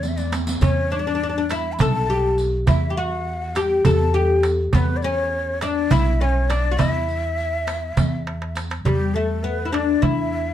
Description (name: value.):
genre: Turkish makam ensemble.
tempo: 204 BPM (eighths).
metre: 7/8.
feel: straight.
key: E makam huseyni.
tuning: A4 = 440 Hz.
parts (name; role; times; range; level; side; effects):
oud; melody; 0.0-10.5 s; G3 to A4; -22 LUFS; left 3 dB; none.
breathy ney; second line; 0.0-10.5 s; G4 to B5; -27 LUFS; left 2 dB; none.
upright bass; bass; 0.0-10.5 s; B1 to E2; -23 LUFS; equal; none.
riq; percussion; 0.0-8.8 s; none; -31 LUFS; right 2 dB; none.
darbuka; percussion; 0.3-10.2 s; none; -22 LUFS; right 3 dB; none.
room: light reverb.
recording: dark, warm production.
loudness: -18 LUFS.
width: side -11 dB against mid.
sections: 0.0-8.9 A section; 8.9-10.5 B section.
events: drum fill 0.0-0.6, 8.3-8.9.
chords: none.